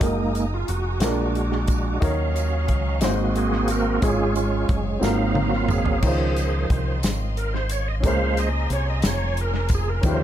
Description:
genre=slow gospel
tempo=60 BPM (dotted quarters)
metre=6/8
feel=straight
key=Db major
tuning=A4 = 439 Hz
part: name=warm upright piano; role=accompaniment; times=0.0-10.2 s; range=Ab2 to Db5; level=-28 LUFS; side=left 1 dB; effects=none
part: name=bright studio string section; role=sustained chords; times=0.0-10.2 s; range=Db5 to Eb6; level=-36 LUFS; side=left 1 dB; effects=none
part: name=bright tonewheel organ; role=sustained chords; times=0.0-10.2 s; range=Db3 to F5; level=-25 LUFS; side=right 2 dB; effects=chorus vibrato, fast rotary speaker
part: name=deep dub fingered electric bass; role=bass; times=0.0-10.2 s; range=F1 to Eb2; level=-24 LUFS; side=equal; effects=none
part: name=natural country drum kit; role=drums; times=0.0-10.2 s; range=crash cymbal, hi-hat, kick drum, snare drum, toms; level=-25 LUFS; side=equal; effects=analog delay
part: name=tambourine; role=percussion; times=0.0-10.2 s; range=none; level=-38 LUFS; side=right 6 dB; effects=none
room=light reverb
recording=echo-heavy mix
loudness=-20 LUFS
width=side -11 dB against mid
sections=0.0-10.2 A section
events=tonewheel organ solo 0.0-10.2; drum fill 5.0-6.0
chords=0.0 Gb69; 1.0 Bb7b13; 2.0 Ebm7; 3.0 Ab7; 4.0 Db/Ab; 5.0 Ab13; 6.0 Dbmaj9; 8.0 Bbm9

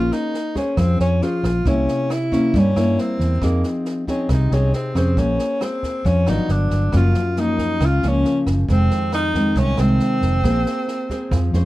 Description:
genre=bossa nova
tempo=137 BPM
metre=4/4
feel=straight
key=Bb minor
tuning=A4 = 440 Hz
part: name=breathy tenor saxophone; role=melody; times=0.0-11.7 s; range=Bb3 to F4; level=-23 LUFS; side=equal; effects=none
part: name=nylon-string guitar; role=accompaniment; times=0.0-11.7 s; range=F2 to C5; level=-21 LUFS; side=left 1 dB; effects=none
part: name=fingered electric bass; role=bass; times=0.0-11.6 s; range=F1 to G2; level=-18 LUFS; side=right 1 dB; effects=none
part: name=compact cocktail drum kit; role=drums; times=0.1-11.6 s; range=kick drum, rim click, snare drum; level=-27 LUFS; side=right 1 dB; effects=none
room=light reverb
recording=dark, warm production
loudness=-17 LUFS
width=side -17 dB against mid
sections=0.0-11.7 A section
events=none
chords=0.0 Bbm9; 1.7 C7b9; 3.4 Fm7; 5.2 Bbm9; 6.5 Gmaj7; 6.9 Gbmaj7; 8.7 Fm7; 10.4 Bb7sus2

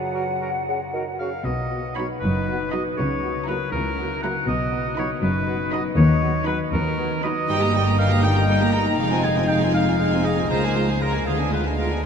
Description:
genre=cinematic, playful, whimsical film cue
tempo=79 BPM (dotted quarters)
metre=6/8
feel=straight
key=B major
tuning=A4 = 440 Hz
part: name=mellow flute section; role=second line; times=0.0-1.2 s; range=F#5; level=-30 LUFS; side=left 2 dB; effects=none
part: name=mellow bassoon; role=accompaniment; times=0.0-1.3 s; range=C#3 to F#3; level=-35 LUFS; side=right 2 dB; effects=none
part: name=concert harp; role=arpeggios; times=0.0-12.1 s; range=F2 to B4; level=-28 LUFS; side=left 5 dB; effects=none
part: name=clear clarinet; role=second line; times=0.1-1.3 s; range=F#4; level=-38 LUFS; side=right 5 dB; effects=none
part: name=warm oboe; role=second line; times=0.2-12.0 s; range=Ab4 to Bb5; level=-26 LUFS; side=equal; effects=none
part: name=warm chamber double bass section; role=bass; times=1.4-12.0 s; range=F1 to D#2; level=-26 LUFS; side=right 1 dB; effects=none
part: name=warm studio cello section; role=bass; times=1.5-12.0 s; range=Db2 to C#3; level=-26 LUFS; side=equal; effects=none
part: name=mellow French horn section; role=sustained chords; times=1.7-12.1 s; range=Ab3 to F#4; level=-31 LUFS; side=left 1 dB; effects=none
part: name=warm studio violin section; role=melody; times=2.0-12.0 s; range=F5 to B5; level=-31 LUFS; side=equal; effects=none
part: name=warm studio violin section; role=second line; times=2.0-12.0 s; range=D4 to Ab4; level=-32 LUFS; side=right 2 dB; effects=none
part: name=rich studio viola section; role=accompaniment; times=2.0-12.1 s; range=F#3 to C4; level=-30 LUFS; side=right 6 dB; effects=none
room=wet huge ambient reverb, RT60 7.6 s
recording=in a vast, echoing space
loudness=-19 LUFS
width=side -7 dB against mid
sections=0.0-1.5 A section; 1.5-12.1 B section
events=none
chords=0.0 F#; 1.5 B; 3.0 F#7/C#; 4.5 B; 6.0 B/D#; 7.5 Eb/G; 9.0 Fm7; 10.5 Bbm7/Db; 11.3 Ddim7

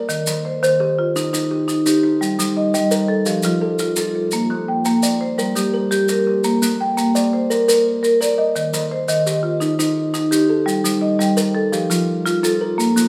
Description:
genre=southern african traditional, mbira-style interlocking cycle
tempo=113 BPM (dotted quarters)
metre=12/8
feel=straight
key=Bb major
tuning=A4 = 440 Hz
part: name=kalimba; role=arpeggios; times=0.0-13.1 s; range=Eb3 to G5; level=-22 LUFS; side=equal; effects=none
part: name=marimba with medium hard mallets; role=arpeggios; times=0.0-13.1 s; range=Eb3 to G5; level=-21 LUFS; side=equal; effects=none
part: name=maracas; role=percussion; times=0.1-13.1 s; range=none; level=-28 LUFS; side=equal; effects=none
room=light reverb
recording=none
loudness=-18 LUFS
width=mono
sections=0.0-6.4 A section; 6.4-13.1 B section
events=none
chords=0.1 Eb; 2.2 Gm; 3.3 F; 4.3 Bb; 5.4 Gm; 6.4 Bb; 8.6 Eb; 10.7 Gm; 11.7 F

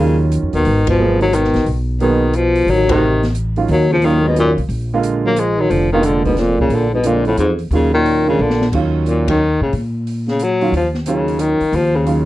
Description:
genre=jazz, small-group swing and bop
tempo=179 BPM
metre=3/4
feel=swing 64% on 8ths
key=Eb minor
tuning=A4 = 438 Hz
part: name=mellow baritone saxophone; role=melody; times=0.0-12.3 s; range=Ab2 to Bb3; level=-16 LUFS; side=left 2 dB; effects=slapback echo
part: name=mellow trombone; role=second line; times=0.0-8.7 s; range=F2 to Gb3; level=-20 LUFS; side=right 3 dB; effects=slapback echo
part: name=clear grand piano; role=accompaniment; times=0.0-12.3 s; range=D3 to Ab4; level=-20 LUFS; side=right 5 dB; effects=none
part: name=upright bass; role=bass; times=0.0-12.3 s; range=F1 to Bb2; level=-18 LUFS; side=equal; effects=none
part: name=open jazz drum kit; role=drums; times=0.3-12.2 s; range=crash cymbal, hi-hat, kick drum, ride cymbal, snare drum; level=-26 LUFS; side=equal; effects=none
room=light reverb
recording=dry, close 1970s-style studio recording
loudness=-13 LUFS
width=side -15 dB against mid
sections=0.0-8.7 A section; 8.7-12.3 A section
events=band accent 0.8, 2.8, 9.2; drum fill 8.4-8.7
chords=0.0 Ebm9; 0.7 Abm9; 2.7 Adim7; 3.7 Ebm9; 4.7 Bb7; 7.7 Ebm9; 8.4 Bb; 8.7 Ebm9

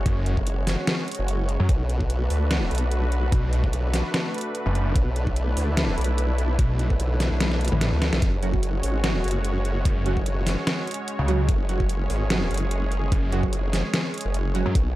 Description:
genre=heavy wobble dubstep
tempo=147 BPM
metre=4/4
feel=swing 54% on 16ths, half-time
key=F# minor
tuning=A4 = 440 Hz
part: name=supersaw pad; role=sustained chords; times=0.0-15.0 s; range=G#3 to C#5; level=-31 LUFS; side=right 1 dB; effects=sidechain pumping, low-pass filter
part: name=formant-sweep wobble bass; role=bass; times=0.0-15.0 s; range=F#1 to D2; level=-24 LUFS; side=equal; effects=chorus, overdrive
part: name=snarling distorted saw bass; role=bass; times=0.1-14.7 s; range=F#1 to F#2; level=-23 LUFS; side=equal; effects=distortion, overdrive
part: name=dubstep drum kit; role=drums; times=0.1-14.8 s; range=hi-hat, snare drum, toms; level=-26 LUFS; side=equal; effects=none
part: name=electronic kick drum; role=drums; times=0.1-14.8 s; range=none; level=-23 LUFS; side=equal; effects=none
part: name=orchestra-hit-like synth stab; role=stabs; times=8.4-14.6 s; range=F#3 to F#4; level=-30 LUFS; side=right 4 dB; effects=built-in reverb, tape echo
room=little or no reverb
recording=dark, warm production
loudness=-21 LUFS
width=side -16 dB against mid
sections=0.0-15.0 A section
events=drum fill 7.4-8.2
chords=0.0 F#sus2; 1.7 Bm7; 8.2 F#sus2

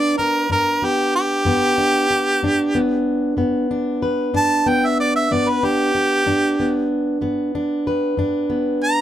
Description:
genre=acoustic country blues, solo or duo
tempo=62 BPM (dotted quarters)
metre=12/8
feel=straight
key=G major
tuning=A4 = 440 Hz
part: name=clear harmonica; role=melody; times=0.0-9.0 s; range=G4 to Bb5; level=-18 LUFS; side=right 1 dB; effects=none
part: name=fingerpicked plugged-in steel-string acoustic guitar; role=accompaniment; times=0.0-9.0 s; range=G2 to B4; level=-19 LUFS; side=equal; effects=none
room=light reverb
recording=close, detailed microphones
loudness=-17 LUFS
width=side -12 dB against mid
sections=0.0-9.0 A section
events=harmonica solo 0.0-9.0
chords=0.0 G

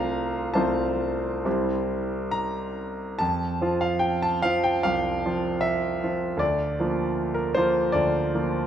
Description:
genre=classical, romantic character piece for solo piano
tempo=65-80 BPM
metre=4/4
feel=rubato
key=F major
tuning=A4 = 440 Hz
part: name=clear concert grand piano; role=solo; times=0.0-8.7 s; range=C2 to Bb5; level=-23 LUFS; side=equal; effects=none
room=moderate recital hall reverb, RT60 1.8 s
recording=minimal, uncompressed stereo recording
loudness=-23 LUFS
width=side -9 dB against mid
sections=0.0-3.2 A section; 3.2-8.7 B section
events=none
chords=0.0 F/C; 1.5 C; 3.2 F5; 6.4 Bb/D

